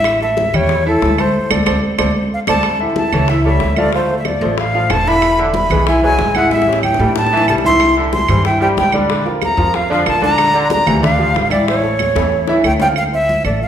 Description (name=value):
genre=latin, salsa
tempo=186 BPM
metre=4/4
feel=straight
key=D minor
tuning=A4 = 440 Hz
part: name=breathy bright concert flute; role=melody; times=0.0-13.7 s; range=A4 to C6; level=-16 LUFS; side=equal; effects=none
part: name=clear upright piano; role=accompaniment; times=0.0-13.7 s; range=D3 to E6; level=-18 LUFS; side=right 1 dB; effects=none
part: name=upright bass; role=bass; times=0.0-13.7 s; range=E1 to A2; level=-20 LUFS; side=equal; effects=none
part: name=bongos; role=percussion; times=0.0-12.9 s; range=none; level=-24 LUFS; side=left 6 dB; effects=none
part: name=claves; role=percussion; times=0.1-13.6 s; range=none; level=-25 LUFS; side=right 6 dB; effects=none
part: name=congas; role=percussion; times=0.1-13.7 s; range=none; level=-23 LUFS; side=left 1 dB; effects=none
part: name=bright trombone section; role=second line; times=2.8-12.9 s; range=C#3 to A3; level=-24 LUFS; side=left 2 dB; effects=none
room=wet recital hall reverb, RT60 1.5 s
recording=recorded in a church or concert hall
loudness=-12 LUFS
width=side -9 dB against mid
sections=0.0-2.6 A section; 2.6-13.0 B section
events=drum fill 1.3-2.6, 6.5-7.8, 12.0-13.0; band accent 1.3-2.6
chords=0.1 A7; 1.3 D5; 2.6 A; 3.9 Dm7; 5.2 E; 6.5 A7; 7.8 Cadd9; 9.1 Bb; 10.4 Gm7/Bb; 11.7 A; 13.0 D7(no3)